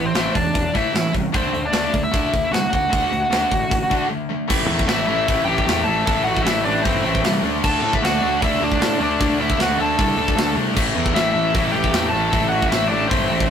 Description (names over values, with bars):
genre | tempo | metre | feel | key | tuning
punk rock | 153 BPM | 4/4 | straight | unclear | A4 = 440 Hz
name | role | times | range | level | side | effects
biting lead guitar | melody | 0.0-13.5 s | C4 to A5 | -21 LUFS | equal | overdrive
sludgy distorted guitar | riff | 0.0-13.5 s | A2 to D4 | -26 LUFS | right 6 dB | overdrive
tight distorted guitar | riff | 0.0-13.5 s | A2 to D4 | -24 LUFS | left 6 dB | distortion
fuzz picked electric bass | bass | 0.0-13.5 s | E1 to D3 | -26 LUFS | equal | overdrive
tight metal drum kit | drums | 0.1-13.5 s | crash cymbal, hi-hat, kick drum, snare drum | -23 LUFS | equal | none
biting overdriven guitar | riff | 4.5-13.5 s | A2 to D4 | -28 LUFS | right 1 dB | none
room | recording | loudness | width
moderate studio ambience, RT60 0.5 s | rough rehearsal-room recording | -17 LUFS | side -8 dB against mid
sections
0.0-4.5 A section; 4.5-13.5 B section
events
break 4.1-4.5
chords
0.0 Am; 1.3 D; 4.5 Am; 7.4 D; 10.8 Am